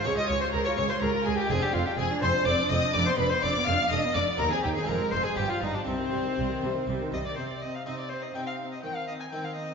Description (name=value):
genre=classical, baroque-style concerto movement with solo episodes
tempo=124 BPM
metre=3/4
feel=straight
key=C minor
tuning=A4 = 440 Hz
part: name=rich chamber violin section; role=melody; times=0.0-9.7 s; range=Eb4 to F6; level=-33 LUFS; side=left 4 dB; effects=none
part: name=rich violin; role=melody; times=0.0-9.7 s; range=C4 to Ab5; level=-30 LUFS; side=left 2 dB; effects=none
part: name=rich symphonic violin section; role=second line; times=0.0-9.7 s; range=C4 to Ab5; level=-32 LUFS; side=left 2 dB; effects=none
part: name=harpsichord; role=accompaniment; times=0.0-9.7 s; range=Db2 to G4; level=-36 LUFS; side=right 2 dB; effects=none
part: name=rich chamber viola section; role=accompaniment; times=0.0-9.7 s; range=Eb3 to Ab4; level=-34 LUFS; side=right 2 dB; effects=none
part: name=rich symphonic cello section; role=bass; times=0.1-9.7 s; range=Db2 to Eb3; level=-36 LUFS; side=right 3 dB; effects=none
part: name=warm chamber double bass section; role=bass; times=0.1-7.2 s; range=F1 to Eb2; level=-34 LUFS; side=right 3 dB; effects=none
room=wet recital hall reverb, RT60 1.4 s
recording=recorded in a church or concert hall, nothing above 7.6 kHz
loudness=-25 LUFS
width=side -5 dB against mid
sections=0.0-7.4 A section; 7.4-9.7 B section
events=none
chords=0.0 Db; 1.5 Dm7b5/F; 2.9 G7/F; 4.4 Cm/Eb; 4.9 Fm; 5.4 G7; 5.9 Cm; 8.8 Cm/Eb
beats=| 0.05 0.53 1.01 | 1.50 1.98 2.46 | 2.94 3.43 3.92 | 4.40 4.89 5.38 | 5.88 6.38 6.89 | 7.38 7.87 8.36 | 8.85 9.33